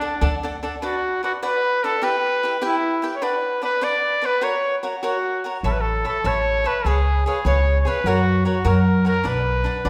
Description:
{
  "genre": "mexican folk, mariachi",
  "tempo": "100 BPM (dotted quarters)",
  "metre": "6/8",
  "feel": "straight",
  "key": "B minor",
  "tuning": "A4 = 440 Hz",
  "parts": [
    { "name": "clear trumpet", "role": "melody", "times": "0.0-9.9 s", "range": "D4 to D5", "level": "-24 LUFS", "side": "equal", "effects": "none" },
    { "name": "cavaquinho", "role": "accompaniment", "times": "0.0-9.9 s", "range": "D4 to B5", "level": "-29 LUFS", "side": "equal", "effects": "none" },
    { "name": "upright bass", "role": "bass", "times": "0.2-0.6, 5.6-9.9 s", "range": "A1 to F#2", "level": "-23 LUFS", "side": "equal", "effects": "none" }
  ],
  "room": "wet scoring stage reverb, RT60 1.9 s",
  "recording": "recorded in a church or concert hall",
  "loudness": "-21 LUFS",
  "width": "mono",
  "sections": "0.8-9.9 A section",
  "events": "none",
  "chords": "0.0 D; 0.8 Bm; 2.0 Em; 3.2 Bm; 4.4 F#; 5.6 Aadd9; 6.8 C#7; 8.1 F#; 9.3 Bm"
}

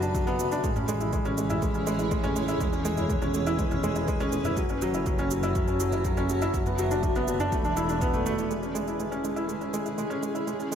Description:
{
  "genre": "piano and strings electronica",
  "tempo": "122 BPM",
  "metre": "4/4",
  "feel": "straight",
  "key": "unclear",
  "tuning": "A4 = 440 Hz",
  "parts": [
    { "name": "granular cloud pad", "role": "sustained chords", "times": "0.0-10.8 s", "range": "E4 to B5", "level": "-34 LUFS", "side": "equal", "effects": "built-in reverb, sidechain pumping" },
    { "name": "felt-muted upright piano", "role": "riff", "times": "0.0-10.8 s", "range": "F#3 to E4", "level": "-28 LUFS", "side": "equal", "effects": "ping-pong delay" },
    { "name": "clear chamber double bass section", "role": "bass", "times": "0.0-8.5 s", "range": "E1 to A1", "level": "-32 LUFS", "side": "equal", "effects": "sidechain pumping" },
    { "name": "electronic shaker and toms", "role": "drums", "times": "0.0-10.8 s", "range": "none", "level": "-39 LUFS", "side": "right 2 dB", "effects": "none" },
    { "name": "electronic kick drum", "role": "drums", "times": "0.1-8.1 s", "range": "none", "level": "-30 LUFS", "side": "equal", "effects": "none" }
  ],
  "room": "light reverb, digital ambience",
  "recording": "none",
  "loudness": "-25 LUFS",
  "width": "side -8 dB against mid",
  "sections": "0.0-8.5 A section; 8.5-10.8 B section",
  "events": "none",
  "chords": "0.0 D6/F#; 0.6 Amaj7; 2.6 E6; 4.6 F#m7; 6.5 D6/F#; 7.5 E7sus4; 8.5 C#m"
}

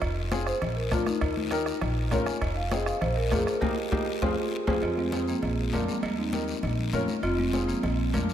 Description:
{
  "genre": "latin, cumbia",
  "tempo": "199 BPM",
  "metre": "4/4",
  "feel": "straight",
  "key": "F minor",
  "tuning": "A4 = 440 Hz",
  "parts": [
    { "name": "upright bass", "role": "bass", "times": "0.0-8.3 s", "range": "F1 to F2", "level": "-31 LUFS", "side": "equal", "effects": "none" },
    { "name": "bombo", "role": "percussion", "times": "0.0-4.7 s", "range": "none", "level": "-33 LUFS", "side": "right 1 dB", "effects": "none" },
    { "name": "congas", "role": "percussion", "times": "0.0-8.3 s", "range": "none", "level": "-34 LUFS", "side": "left 4 dB", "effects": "none" },
    { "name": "cowbell and timbales", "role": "percussion", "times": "0.0-8.3 s", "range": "none", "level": "-39 LUFS", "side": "right 5 dB", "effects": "none" },
    { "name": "guiro", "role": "percussion", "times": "0.0-8.3 s", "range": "none", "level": "-41 LUFS", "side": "left 7 dB", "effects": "none" },
    { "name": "dark upright piano", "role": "accompaniment", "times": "0.3-8.3 s", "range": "Bb3 to Bb4", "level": "-33 LUFS", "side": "left 2 dB", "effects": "wide subtle chorus" },
    { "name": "marimba with medium mallets", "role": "melody", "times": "0.5-8.3 s", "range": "F3 to Ab5", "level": "-29 LUFS", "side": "right 1 dB", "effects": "ping-pong delay" }
  ],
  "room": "moderate lush hall reverb, RT60 3.0 s",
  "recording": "dreamy mix soaked in reverb",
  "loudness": "-25 LUFS",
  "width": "side -10 dB against mid",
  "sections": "0.0-4.8 A section; 4.8-8.3 B section",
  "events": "marimba solo 0.0-4.8; band accent 3.6-4.8; drum fill 3.9-4.8",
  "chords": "0.0 Fm; 0.6 Bb; 1.2 Eb; 1.8 Bbm; 2.4 Fm; 3.0 Bb; 3.6 Eb; 4.2 Fm; 5.4 Bb; 6.0 Eb; 6.6 Bbm; 7.2 Fm; 7.8 Bb"
}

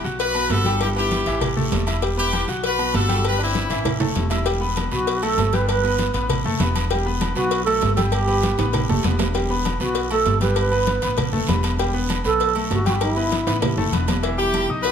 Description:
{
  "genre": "latin, salsa",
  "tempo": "197 BPM",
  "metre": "4/4",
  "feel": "straight",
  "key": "E minor",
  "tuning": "A4 = 440 Hz",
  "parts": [
    { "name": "brilliant horn section", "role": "melody", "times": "0.0-4.0, 14.4-14.9 s", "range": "C4 to B4", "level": "-23 LUFS", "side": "left 2 dB", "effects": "tape echo" },
    { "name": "bright baby grand piano", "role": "accompaniment", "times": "0.0-14.9 s", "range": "E3 to F#6", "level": "-26 LUFS", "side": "left 1 dB", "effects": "none" },
    { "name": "upright bass", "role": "bass", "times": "0.0-14.9 s", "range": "E1 to B1", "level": "-24 LUFS", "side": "equal", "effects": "none" },
    { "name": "congas", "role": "percussion", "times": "0.0-14.9 s", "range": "none", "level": "-28 LUFS", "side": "left 1 dB", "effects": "none" },
    { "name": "guiro", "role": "percussion", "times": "0.0-14.2 s", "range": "none", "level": "-34 LUFS", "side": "right 6 dB", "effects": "none" },
    { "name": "agogo bells and timbales", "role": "percussion", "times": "0.2-14.9 s", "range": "none", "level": "-30 LUFS", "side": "right 7 dB", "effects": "none" },
    { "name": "cowbell", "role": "percussion", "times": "0.2-14.9 s", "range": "none", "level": "-30 LUFS", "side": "left 9 dB", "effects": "none" },
    { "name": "bright reedy wooden-headed alto flute", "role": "melody", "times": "4.9-13.9 s", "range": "E4 to B4", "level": "-22 LUFS", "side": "right 4 dB", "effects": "tape echo" }
  ],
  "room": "light reverb",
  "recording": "lossy compression artefacts",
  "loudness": "-18 LUFS",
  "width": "side -8 dB against mid",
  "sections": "0.0-4.5 A section; 4.5-14.2 B section",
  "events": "drum fill 3.9-4.5, 8.6-9.3, 13.5-14.2",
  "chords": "0.2 B5; 0.8 G6; 1.4 A5; 2.0 Em; 2.6 B5; 3.2 G6; 3.9 Am; 4.5 Em; 5.1 Gadd9; 6.3 Asus2; 6.9 Em; 7.5 Gadd9; 8.7 Asus2; 9.3 Em; 10.0 Gadd9; 11.2 Asus2; 11.8 Em; 12.4 Gadd9; 13.6 Asus2; 14.2 Em"
}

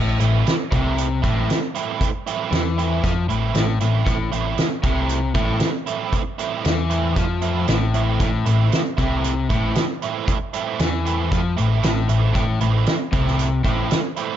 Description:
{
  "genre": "indie rock",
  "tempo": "116 BPM",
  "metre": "4/4",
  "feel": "straight",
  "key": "A minor",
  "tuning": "A4 = 441 Hz",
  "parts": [
    { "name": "crunchy overdriven guitar", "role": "riff", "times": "0.0-13.9 s", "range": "A2 to F3", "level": "-23 LUFS", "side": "left 4 dB", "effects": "none" },
    { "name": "picked electric bass", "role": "bass", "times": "0.0-13.9 s", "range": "A1 to F2", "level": "-23 LUFS", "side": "equal", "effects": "none" },
    { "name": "biting overdriven guitar", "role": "riff", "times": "0.2-14.4 s", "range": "E3 to E4", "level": "-25 LUFS", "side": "right 8 dB", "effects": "ensemble chorus, analog delay" },
    { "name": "loose indie drum kit", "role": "drums", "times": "0.2-14.3 s", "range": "hi-hat, kick drum, snare drum", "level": "-23 LUFS", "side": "equal", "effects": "none" }
  ],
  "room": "small room reverb",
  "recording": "dark, warm production, nothing above 7.5 kHz",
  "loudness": "-18 LUFS",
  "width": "side -10 dB against mid",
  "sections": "0.0-14.4 A section",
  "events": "none",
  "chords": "0.0 Am"
}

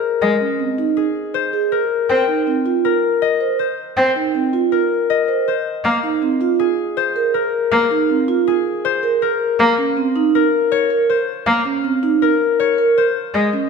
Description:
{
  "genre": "classical, minimalist pattern music",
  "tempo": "160 BPM",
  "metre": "5/4",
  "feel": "straight",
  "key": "unclear",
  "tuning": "A4 = 440 Hz",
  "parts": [
    { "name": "concert harp", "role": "melody", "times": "0.0-13.7 s", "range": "Ab4 to G5", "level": "-19 LUFS", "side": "left 8 dB", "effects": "none" },
    { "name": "rich cello", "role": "accompaniment", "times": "0.2-13.5 s", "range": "Ab3 to C4", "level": "-19 LUFS", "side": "right 1 dB", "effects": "none" },
    { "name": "vibraphone with soft mallets", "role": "arpeggios", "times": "0.4-13.7 s", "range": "C4 to C5", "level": "-18 LUFS", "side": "right 8 dB", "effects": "none" }
  ],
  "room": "moderate scoring stage reverb, RT60 1.6 s",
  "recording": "none",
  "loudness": "-15 LUFS",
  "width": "side -5 dB against mid",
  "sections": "0.0-13.7 A section",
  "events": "none",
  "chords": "0.0 Dbmaj7sus2; 2.1 Cm7; 5.8 Ab69; 9.6 Ebsus2"
}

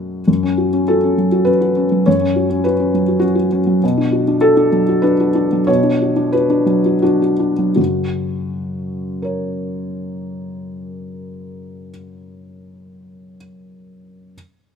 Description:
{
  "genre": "neoclassical minimalist piano",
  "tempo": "80-104 BPM",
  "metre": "3/4",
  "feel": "rubato",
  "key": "unclear",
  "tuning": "A4 = 439 Hz",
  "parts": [
    { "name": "felt-muted upright piano", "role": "solo", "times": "0.0-14.4 s", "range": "F#2 to C#5", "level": "-15 LUFS", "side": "left 1 dB", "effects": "none" }
  ],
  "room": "light reverb",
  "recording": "minimal, uncompressed stereo recording",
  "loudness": "-14 LUFS",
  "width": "side -6 dB against mid",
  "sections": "0.3-7.8 A section; 7.8-12.1 B section",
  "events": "slowing down 2.9-7.8",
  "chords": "0.3 F#m; 3.8 Bm; 7.8 F#"
}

